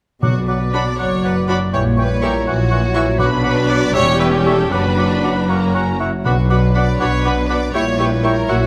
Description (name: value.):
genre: quick classical-period movement for symphony orchestra.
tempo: 80 BPM (dotted quarters).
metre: 6/8.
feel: rubato.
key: B minor.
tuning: A4 = 440 Hz.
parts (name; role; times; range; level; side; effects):
bright silver concert flute; second line; 0.2-8.6 s; C#6 to D6; -30 LUFS; equal; none.
clear oboe; second line; 0.2-8.6 s; E5 to G5; -30 LUFS; equal; none.
rich chamber violin section; second line; 0.2-8.7 s; F#4 to D5; -26 LUFS; equal; none.
warm bassoon; accompaniment; 0.2-8.6 s; E3 to E4; -28 LUFS; equal; none.
mellow French horn section; sustained chords; 0.2-8.7 s; F#3 to F#4; -27 LUFS; equal; none.
clear trumpet; stabs; 0.2-8.7 s; G4 to D5; -27 LUFS; equal; none.
dark chamber cello section; bass; 0.2-8.7 s; E2 to B2; -23 LUFS; equal; none.
rich chamber double bass section; bass; 0.2-8.7 s; E1 to B1; -23 LUFS; equal; none.
timpani; percussion; 0.2-3.9, 6.3-7.0 s; B2; -24 LUFS; equal; none.
rich chamber violin section; melody; 0.7-8.6 s; G5 to C#6; -31 LUFS; equal; none.
rich studio viola section; accompaniment; 0.7-8.6 s; C#4 to G4; -27 LUFS; equal; none.
room: moderate scoring stage reverb, RT60 1.8 s.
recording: none.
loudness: -16 LUFS.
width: mono.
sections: 0.2-8.7 A section.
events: none.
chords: 0.2 Bm; 1.7 A#dim7; 2.5 F#7/A#; 3.2 Bm; 3.9 C#dim/E; 4.7 Bm/F#; 5.5 F#; 6.3 Bm; 7.7 A#dim7.